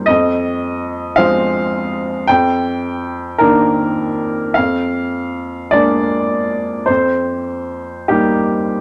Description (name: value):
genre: neoclassical minimalist piano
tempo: 53 BPM (dotted quarters)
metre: 6/8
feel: uneven beats, rubato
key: F dorian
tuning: A4 = 438 Hz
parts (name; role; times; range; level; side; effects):
- clear upright piano; solo; 0.0-8.8 s; F2 to G5; -17 LUFS; equal; none
room: moderate studio ambience, RT60 0.5 s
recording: none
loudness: -17 LUFS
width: mono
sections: 0.0-8.8 A section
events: none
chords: 0.1 Fm7; 2.3 Ebmaj7/F; 4.6 Bb7/F; 6.9 Cm7/F